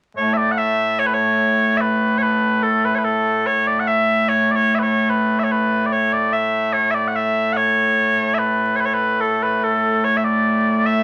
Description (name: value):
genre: scottish traditional, Scottish pipe music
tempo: 73 BPM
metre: 2/4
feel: straight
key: A major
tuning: A4 = 440 Hz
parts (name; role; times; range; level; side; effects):
- mellow small bagpipes; solo; 0.2-11.0 s; A2 to F#5; -18 LUFS; equal; none
room: wet club ambience, RT60 0.5 s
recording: vinyl crackle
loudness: -18 LUFS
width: mono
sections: 0.6-11.0 A section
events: none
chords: none